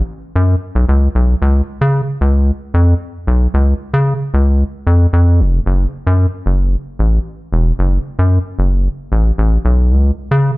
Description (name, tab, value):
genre	funk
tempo	113 BPM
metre	4/4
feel	straight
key	unclear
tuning	A4 = 439 Hz
part	rubbery square bass	solo	0.0-10.5 s	E1 to C#3	-12 LUFS	equal	none
room	moderate echo chamber reverb, RT60 1.3 s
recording	dark, warm production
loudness	-12 LUFS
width	side -21 dB against mid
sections	0.0-1.4 A section; 1.4-10.6 B section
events	none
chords	none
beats	0.36 0.89 | 1.42 1.95 2.48 3.01 | 3.54 4.07 4.61 5.14 | 5.67 6.20 6.73 7.26 | 7.79 8.32 8.85 9.38 | 9.91 10.45